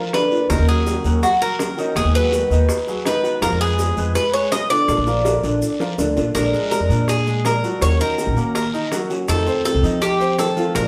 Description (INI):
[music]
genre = latin, Cuban son and guajira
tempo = 164 BPM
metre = 4/4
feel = straight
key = unclear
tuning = A4 = 439 Hz
[part]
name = Cuban tres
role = melody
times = 0.0-10.9 s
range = Gb4 to Eb5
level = -23 LUFS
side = equal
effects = none
[part]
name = warm grand piano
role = arpeggios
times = 0.0-10.9 s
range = D3 to F5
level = -27 LUFS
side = equal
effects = none
[part]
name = fingerpicked old ladder-braced acoustic guitar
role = accompaniment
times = 0.1-10.9 s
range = C3 to Gb4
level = -28 LUFS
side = equal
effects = none
[part]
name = bongos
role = percussion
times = 0.1-10.9 s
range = none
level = -30 LUFS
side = equal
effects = none
[part]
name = guiro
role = percussion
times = 0.1-10.9 s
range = none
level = -38 LUFS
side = equal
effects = none
[part]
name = upright bass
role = bass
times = 0.5-10.9 s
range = Bb1 to F3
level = -23 LUFS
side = equal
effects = none
[part]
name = maracas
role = percussion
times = 0.5-10.9 s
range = none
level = -39 LUFS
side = equal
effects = none
[sound]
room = wet studio reverb, RT60 0.9 s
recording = band playing live in one room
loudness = -19 LUFS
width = mono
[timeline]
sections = 0.0-6.4 A section; 6.4-10.9 B section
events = drum fill 5.3-6.4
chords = 0.0 Bb; 0.5 Ebm7; 2.0 Abm7/Eb; 3.4 Fdim; 4.9 Bb; 6.4 Bb7; 7.8 Ebm7; 9.3 F7